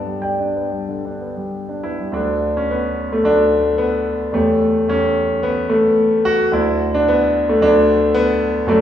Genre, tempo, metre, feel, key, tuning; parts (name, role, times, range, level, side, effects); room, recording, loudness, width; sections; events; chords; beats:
classical, romantic character piece for solo piano; 110 BPM; 4/4; uneven beats, rubato; D major; A4 = 442 Hz
clear concert grand piano; solo; 0.0-8.8 s; D2 to A5; -15 LUFS; equal
wet recital hall reverb, RT60 1.7 s; heard from further back in the room, small room ambience; -15 LUFS; side -10 dB against mid
0.0-2.1 A section; 2.1-8.8 B section
0.0 G; 2.1 D; 4.4 A7/E; 6.5 D
0.22 0.87 1.52 | 2.15 2.73 3.27 3.81 | 4.36 4.92 5.45 6.00 | 6.54 7.10 7.64 8.16 | 8.70